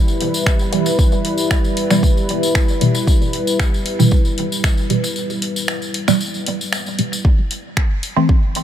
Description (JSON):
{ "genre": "dub techno", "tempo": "115 BPM", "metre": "4/4", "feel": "straight", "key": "unclear", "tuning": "A4 = 440 Hz", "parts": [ { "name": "dark analog pad", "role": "sustained chords", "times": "0.0-7.2 s", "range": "G3 to B4", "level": "-22 LUFS", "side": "left 1 dB", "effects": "chorus, sidechain pumping" }, { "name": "tambourine", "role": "percussion", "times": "0.1-7.2 s", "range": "none", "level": "-26 LUFS", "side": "left 3 dB", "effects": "none" }, { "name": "deep house drum kit", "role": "drums", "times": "0.2-8.6 s", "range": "finger snaps, hi-hat", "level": "-25 LUFS", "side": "equal", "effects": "dub echo" }, { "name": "electronic kick drum", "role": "drums", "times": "0.5-8.4 s", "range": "none", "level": "-15 LUFS", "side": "equal", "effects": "none" }, { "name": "filtered dub chord stab", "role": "stabs", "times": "0.7-8.3 s", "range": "B2 to C4", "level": "-19 LUFS", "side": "right 1 dB", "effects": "phaser, sidechain pumping, dub echo" } ], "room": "light reverb, digital ambience", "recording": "none", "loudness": "-15 LUFS", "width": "side -10 dB against mid", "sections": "0.0-7.2 A section; 7.2-8.6 A section", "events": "filter sweep on synth stab 0.0-7.2, 7.2-8.6; break 5.2-7.2", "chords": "0.0 Em; 7.2 Am" }